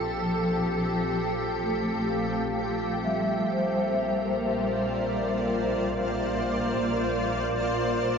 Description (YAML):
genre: ambient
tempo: 64 BPM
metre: 4/4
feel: straight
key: unclear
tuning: A4 = 440 Hz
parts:
  - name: soft additive organ-like pad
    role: sustained chords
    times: 0.0-8.2 s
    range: F3 to D5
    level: -27 LUFS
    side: equal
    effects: ensemble chorus, built-in reverb, shimmer reverb
  - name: dark studio double bass section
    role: bass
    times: 0.0-8.2 s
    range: Bb1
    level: -37 LUFS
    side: equal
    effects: transformer saturation
  - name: vibraphone with soft mallets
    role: arpeggios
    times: 0.2-8.2 s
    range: F3 to F5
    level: -28 LUFS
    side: left 1 dB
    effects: ping-pong delay, shimmer reverb
room: wet huge ambient reverb, RT60 9.4 s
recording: worn, warbling old tape, cassette tape, warbly pitch drift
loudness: -25 LUFS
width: side -6 dB against mid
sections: 0.0-8.2 A section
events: none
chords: 0.0 Fadd9/Bb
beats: 0.68 1.62 2.57 | 3.52 4.46 5.39 6.33 | 7.25 8.17